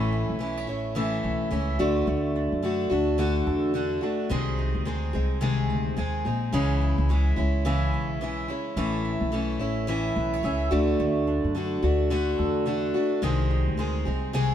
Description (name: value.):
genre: acoustic pop.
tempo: 108 BPM.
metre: 4/4.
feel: swing 60% on 16ths.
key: unclear.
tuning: A4 = 440 Hz.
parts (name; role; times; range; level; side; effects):
picked steel-string acoustic guitar; accompaniment; 0.0-14.5 s; A2 to G#4; -26 LUFS; left 1 dB; none.
mandolin; arpeggios; 0.0-14.5 s; G#3 to G#5; -34 LUFS; right 4 dB; none.
upright bass; bass; 0.0-14.5 s; A1 to F#2; -28 LUFS; equal; none.
room: moderate plate reverb, RT60 3.4 s.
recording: heard from further back in the room.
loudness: -23 LUFS.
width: side -10 dB against mid.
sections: 0.0-14.5 A section.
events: none.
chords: 0.0 A; 1.8 D; 4.3 G#/B#; 6.5 C#m; 8.8 A; 10.7 D; 13.2 G#/B#.